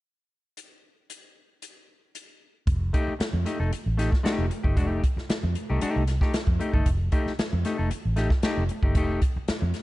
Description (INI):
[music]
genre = funk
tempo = 115 BPM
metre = 4/4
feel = straight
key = F mixolydian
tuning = A4 = 440 Hz
[part]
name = swinging big-band drum kit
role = drums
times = 0.6-9.8 s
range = hi-hat, kick drum, snare drum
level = -26 LUFS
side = equal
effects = none
[part]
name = vintage muted fingered electric bass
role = bass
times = 2.7-9.7 s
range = F1 to F2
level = -26 LUFS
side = equal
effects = none
[part]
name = clean electric guitar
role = accompaniment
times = 2.9-9.7 s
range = A3 to A4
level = -30 LUFS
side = left 2 dB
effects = none
[sound]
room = small room ambience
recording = dark, warm production, nothing above 10.9 kHz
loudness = -23 LUFS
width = side -18 dB against mid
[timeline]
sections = 0.6-2.7 A section; 2.7-9.8 B section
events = none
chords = 0.6 N.C.; 2.7 F9